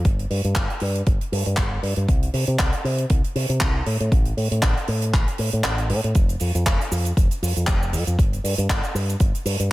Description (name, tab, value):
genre	nu-disco, nu disco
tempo	118 BPM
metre	4/4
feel	swing 55% on 16ths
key	F major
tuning	A4 = 440 Hz
part	fingered electric bass with an envelope filter	bass	0.0-9.7 s	F1 to C3	-22 LUFS	equal	none
part	tight funk drum kit	drums	0.0-9.7 s	cabasa, handclaps, hi-hat	-27 LUFS	right 1 dB	none
part	electronic kick drum	drums	0.1-9.3 s	none	-20 LUFS	equal	none
room	little or no reverb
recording	none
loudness	-19 LUFS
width	side -17 dB against mid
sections	0.0-6.2 A section; 6.2-9.7 B section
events	kick drops out 5.6-6.2; drop 6.2-9.7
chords	none